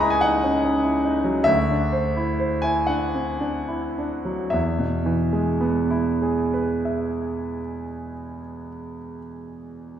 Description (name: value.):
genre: classical, impressionist solo piano.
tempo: 34-50 BPM (dotted quarters).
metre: 6/8.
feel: rubato.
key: unclear.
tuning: A4 = 442 Hz.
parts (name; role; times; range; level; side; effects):
clear concert grand piano; solo; 0.0-10.0 s; C#2 to D#6; -21 LUFS; equal; none.
room: wet recital hall reverb, RT60 1.7 s.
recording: heard from further back in the room.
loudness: -20 LUFS.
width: side -9 dB against mid.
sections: 0.0-4.5 A section; 4.5-7.7 B section.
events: slowing down 0.0-4.5.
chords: 0.0 C#m11; 1.5 D9; 4.5 E.